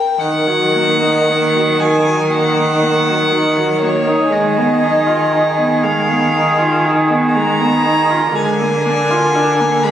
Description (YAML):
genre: classical, slow romantic movement for string quartet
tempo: 60 BPM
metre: 4/4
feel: rubato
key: Eb minor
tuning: A4 = 442 Hz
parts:
  - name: rich violin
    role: melody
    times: 0.0-9.9 s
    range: Db5 to Cb6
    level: -17 LUFS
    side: left 3 dB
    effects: none
  - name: dark violin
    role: second line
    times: 0.0-9.9 s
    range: Ab4 to Bb4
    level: -19 LUFS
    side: right 2 dB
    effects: none
  - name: rich viola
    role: accompaniment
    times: 0.2-9.9 s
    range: Eb3 to F4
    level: -18 LUFS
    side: right 1 dB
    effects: none
  - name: rich cello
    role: bass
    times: 0.2-9.9 s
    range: D3 to Eb3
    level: -18 LUFS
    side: right 1 dB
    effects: none
room: moderate recital hall reverb, RT60 1.7 s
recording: recorded on a phone in the room, club reverb, compression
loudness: -12 LUFS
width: side -10 dB against mid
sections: 0.2-9.9 A section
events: none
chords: 0.2 Ebm; 4.3 Fm7b5/Eb; 8.4 Bb7/D